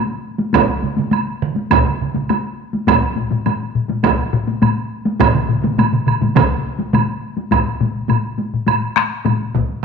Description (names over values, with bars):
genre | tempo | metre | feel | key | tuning
japanese traditional, taiko drum ensemble | 103 BPM | 4/4 | straight | none | none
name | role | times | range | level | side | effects
taiko ensemble | percussion | 0.4-9.8 s | none | -21 LUFS | left 2 dB | none
taiko ensemble | percussion | 0.5-7.1 s | none | -21 LUFS | right 5 dB | none
taiko ensemble | percussion | 0.5-9.7 s | none | -19 LUFS | right 4 dB | none
woodblock | percussion | 0.5-9.4 s | none | -21 LUFS | right 7 dB | none
taiko ensemble | percussion | 2.9-9.7 s | none | -20 LUFS | left 6 dB | none
room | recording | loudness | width
wet echo chamber reverb, RT60 1.4 s, small room reverb | 1960s-style stereo with parts hard left and right | -15 LUFS | side -6 dB against mid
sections
0.0-7.5 A section; 7.5-9.8 B section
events
none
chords
none